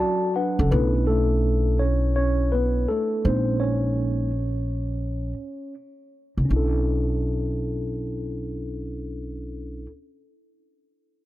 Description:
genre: hip hop, jazz-hop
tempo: 83 BPM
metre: 4/4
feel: swing 65% on 16ths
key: B dorian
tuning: A4 = 439 Hz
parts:
  - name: mellow tine electric piano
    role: accompaniment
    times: 0.0-9.9 s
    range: F#3 to A5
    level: -25 LUFS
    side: equal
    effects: slow stereo tremolo, low-pass filter
  - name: upright bass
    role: bass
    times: 0.6-9.9 s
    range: F#1 to B#1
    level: -24 LUFS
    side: equal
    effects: none
room: light reverb, studio ambience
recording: none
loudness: -22 LUFS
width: side -15 dB against mid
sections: 0.7-6.5 A section; 6.5-9.4 B section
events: tine electric piano fill 0.0-0.7; tine electric piano solo 0.7-6.5; filter sweep on tine electric piano 0.7-6.5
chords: 0.0 Bm9; 0.7 Bm11; 3.2 A#m11; 6.5 Bm11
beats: 0.00 | 0.72 1.44 2.17 2.89 | 3.61 4.33 5.06 5.78 | 6.50 7.23 7.95 8.67

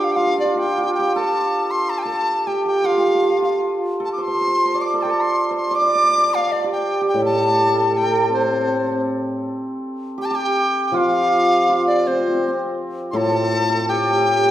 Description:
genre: chinese traditional, Chinese chamber ensemble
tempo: 80 BPM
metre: 2/4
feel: rubato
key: C zhi mode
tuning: A4 = 444 Hz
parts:
  - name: large dizi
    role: melody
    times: 0.0-14.5 s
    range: C5 to D6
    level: -20 LUFS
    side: left 1 dB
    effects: none
  - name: hammered dulcimer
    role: second line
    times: 0.0-14.5 s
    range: C4 to D5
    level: -19 LUFS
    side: right 2 dB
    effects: none
  - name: hammered dulcimer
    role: accompaniment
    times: 7.1-14.5 s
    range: A2 to F3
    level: -25 LUFS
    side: left 2 dB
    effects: none
room: wet recital hall reverb, RT60 1.4 s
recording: heard from further back in the room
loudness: -17 LUFS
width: side -12 dB against mid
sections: 0.0-9.8 A section; 9.8-14.5 B section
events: none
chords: none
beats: 0.05 | 0.79 1.54 | 2.29 3.04 | 3.79 4.55 | 5.31 6.07 | 6.81 7.54 | 8.29 9.04 | 9.80 10.56 | 11.32 12.06 | 12.79 13.53 | 14.28

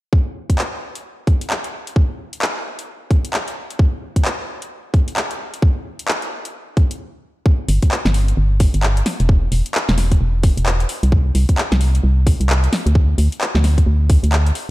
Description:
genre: UK garage, two-step garage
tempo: 131 BPM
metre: 4/4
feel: swing 61% on 16ths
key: unclear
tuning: A4 = 440 Hz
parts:
  - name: electronic kick drum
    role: drums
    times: 0.1-14.2 s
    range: none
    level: -16 LUFS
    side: equal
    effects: none
  - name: garage drum kit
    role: drums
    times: 0.5-14.7 s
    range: handclaps, hi-hat, snare drum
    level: -22 LUFS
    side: equal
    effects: none
  - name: organ-like FM bass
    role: bass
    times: 7.7-14.5 s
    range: E1 to D2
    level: -15 LUFS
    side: equal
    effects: none
room: digital ambience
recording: dark, warm production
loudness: -15 LUFS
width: side -18 dB against mid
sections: 0.1-7.5 A section; 7.5-14.7 B section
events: stop 7.0-7.5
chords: none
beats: | 0.13 0.59 1.04 1.50 | 1.96 2.42 2.88 3.33 | 3.79 4.25 4.71 5.17 | 5.62 6.08 6.54 7.00 | 7.46 7.91 8.37 8.83 | 9.29 9.75 10.20 10.66 | 11.12 11.58 12.04 12.49 | 12.95 13.41 13.87 14.33

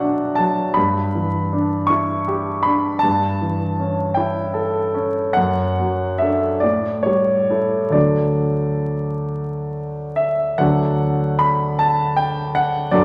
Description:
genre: classical, romantic nocturne for solo piano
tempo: 44-55 BPM (dotted quarters)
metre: 6/8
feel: rubato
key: D major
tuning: A4 = 440 Hz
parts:
  - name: warm concert grand piano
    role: solo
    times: 0.0-13.0 s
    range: D2 to C#6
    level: -19 LUFS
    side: equal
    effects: none
room: wet recital hall reverb, RT60 1.7 s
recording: vinyl crackle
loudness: -20 LUFS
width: mono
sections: 0.0-10.6 A section; 10.6-13.0 B section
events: none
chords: 0.0 Bm; 0.8 Em7/G; 3.0 A7/G; 5.4 D/F#; 6.6 A7; 7.9 D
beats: | 0.76 1.89 | 3.03 4.17 | 5.36 6.63 | 7.95 9.28 | 10.61 11.81 | 12.95

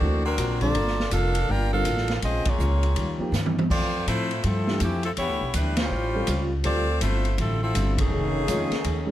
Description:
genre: jazz, big band swing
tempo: 163 BPM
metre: 4/4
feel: swing 63% on 8ths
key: D minor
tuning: A4 = 443 Hz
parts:
  - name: edgy saxophone section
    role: melody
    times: 0.0-9.1 s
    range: Eb3 to G5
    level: -27 LUFS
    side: equal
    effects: none
  - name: dark baby grand piano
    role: accompaniment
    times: 0.0-9.1 s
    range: D3 to A4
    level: -31 LUFS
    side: equal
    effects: none
  - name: picked plugged-in steel-string acoustic guitar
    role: accompaniment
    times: 0.0-9.1 s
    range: F2 to A4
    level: -32 LUFS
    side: left 2 dB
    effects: none
  - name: upright bass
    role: bass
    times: 0.0-9.1 s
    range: F1 to A2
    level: -26 LUFS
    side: equal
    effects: none
  - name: swinging big-band drum kit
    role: drums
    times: 0.4-9.0 s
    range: crash cymbal, hi-hat, kick drum, ride cymbal, snare drum, toms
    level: -30 LUFS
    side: equal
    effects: none
  - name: dark trombone section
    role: second line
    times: 8.0-9.1 s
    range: C#3 to G#4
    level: -30 LUFS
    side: equal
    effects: none
room: little or no reverb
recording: none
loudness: -22 LUFS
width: side -13 dB against mid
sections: 0.0-9.1 A section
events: band accent 2.4, 5.7, 7.9; drum fill 3.3-3.7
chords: 0.0 D7b13; 0.8 Gm9; 2.2 Bbm7; 3.0 Eb9; 3.7 Fmaj7; 5.2 Em7; 5.9 A7alt; 6.6 Dm11; 8.1 F7alt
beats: 0.01 0.38 | 0.75 1.12 1.49 1.85 | 2.22 2.59 2.96 3.33 | 3.69 4.06 4.43 4.80 | 5.17 5.53 5.90 6.27 | 6.64 7.00 7.37 7.74 | 8.11 8.47 8.84

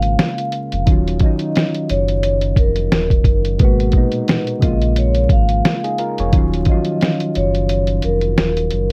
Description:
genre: lo-fi hip hop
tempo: 88 BPM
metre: 4/4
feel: swing 55% on 16ths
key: unclear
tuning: A4 = 440 Hz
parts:
  - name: vibraphone with soft mallets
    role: melody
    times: 0.0-8.9 s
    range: A#4 to E#5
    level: -24 LUFS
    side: equal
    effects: low-pass filter
  - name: soft electric-piano-like synth keys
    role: accompaniment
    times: 0.0-8.9 s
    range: A#2 to C#5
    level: -24 LUFS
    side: equal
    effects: chorus, low-pass filter
  - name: sub bass with octave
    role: bass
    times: 0.0-8.9 s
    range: D#1 to A#1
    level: -21 LUFS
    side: equal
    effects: none
  - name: lo-fi sampler-style drum kit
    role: drums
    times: 0.0-8.9 s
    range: hi-hat, kick drum, snare drum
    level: -18 LUFS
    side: equal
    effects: none
room: light reverb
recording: vinyl crackle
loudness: -17 LUFS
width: mono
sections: 0.0-8.9 A section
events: kick muted 7.7-8.9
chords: 0.0 A#m7; 0.9 D#m9; 3.6 G#m9; 4.6 A#m7; 6.3 D#m9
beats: 0.19 | 0.88 1.56 2.24 2.92 | 3.60 4.28 4.97 5.65 | 6.33 7.01 7.69 8.38

